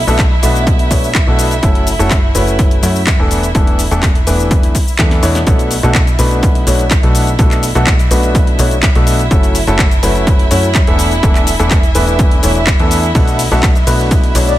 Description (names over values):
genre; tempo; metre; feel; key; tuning
piano house; 125 BPM; 4/4; straight; B minor; A4 = 439 Hz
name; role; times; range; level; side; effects
rich chamber violin section; sustained chords; 0.0-14.6 s; E4 to E5; -21 LUFS; right 2 dB; sidechain pumping
plucky analog bass; bass; 0.0-14.6 s; E1 to F#2; -16 LUFS; equal; sidechain pumping
clear grand piano; riff; 0.1-14.5 s; B2 to C#5; -16 LUFS; left 1 dB; sidechain pumping, tape echo
house drum kit; drums; 0.1-14.6 s; handclaps, hi-hat, ride cymbal, shaker, snare drum; -19 LUFS; left 2 dB; none
electronic kick drum; drums; 0.2-14.2 s; none; -12 LUFS; equal; overdrive
breathy flute-like synth lead; melody; 14.5 s; D5; -13 LUFS; left 7 dB; tremolo, wide subtle chorus
room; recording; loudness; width
little or no reverb; none; -9 LUFS; side -14 dB against mid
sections
0.0-5.5 A section; 5.5-14.6 B section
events
drum fill 5.0-5.5; drop 5.5-14.6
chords
0.0 Bm7; 1.6 F#m7; 3.3 E7sus4; 5.5 Bm7; 9.3 F#m7; 11.0 E7sus4; 13.1 Bm7